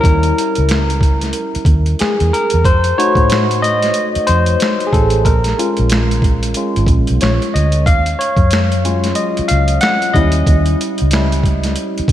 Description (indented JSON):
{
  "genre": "R&B, neo-soul",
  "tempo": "92 BPM",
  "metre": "4/4",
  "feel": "swing 60% on 16ths",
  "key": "Eb minor",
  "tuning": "A4 = 435 Hz",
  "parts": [
    { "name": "barky tine electric piano", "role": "accompaniment", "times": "0.0-12.1 s", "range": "Gb3 to Gb5", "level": "-16 LUFS", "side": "left 1 dB", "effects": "phaser" },
    { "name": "vintage muted fingered electric bass", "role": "bass", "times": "0.0-12.1 s", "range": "Ab1 to A2", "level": "-15 LUFS", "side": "equal", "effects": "none" },
    { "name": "boom bap sampler-style drum kit", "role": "drums", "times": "0.0-12.1 s", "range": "finger snaps, hi-hat, kick drum, snare drum", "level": "-17 LUFS", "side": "equal", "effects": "none" }
  ],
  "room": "moderate lush hall reverb, RT60 2.7 s",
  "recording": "dreamy mix soaked in reverb",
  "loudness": "-12 LUFS",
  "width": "side -12 dB against mid",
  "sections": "0.0-12.1 A section",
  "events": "tine electric piano solo 0.0-12.1",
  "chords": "0.0 Eb7b9; 2.6 F7b9; 5.2 Bbm7; 7.9 Ebm11; 10.1 Eb7b9",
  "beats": "| 0.03 0.69 1.34 1.99 | 2.64 3.29 3.95 4.60 | 5.25 5.90 6.55 7.21 | 7.86 8.51 9.16 9.81 | 10.47 11.12 11.77"
}